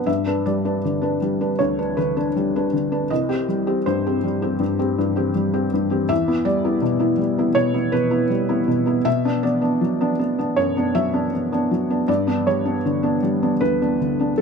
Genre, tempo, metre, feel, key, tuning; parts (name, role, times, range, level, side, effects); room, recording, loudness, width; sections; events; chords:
neoclassical minimalist piano; 80 BPM; 4/4; rubato; A4 = 440 Hz
felt-muted upright piano; solo; 0.0-14.4 s; C2 to F#5; -18 LUFS; equal
light reverb; -18 LUFS; side -5 dB against mid
0.0-14.4 A section
0.1 G; 3.1 Cm; 6.1 Em; 9.1 Bm; 12.1 G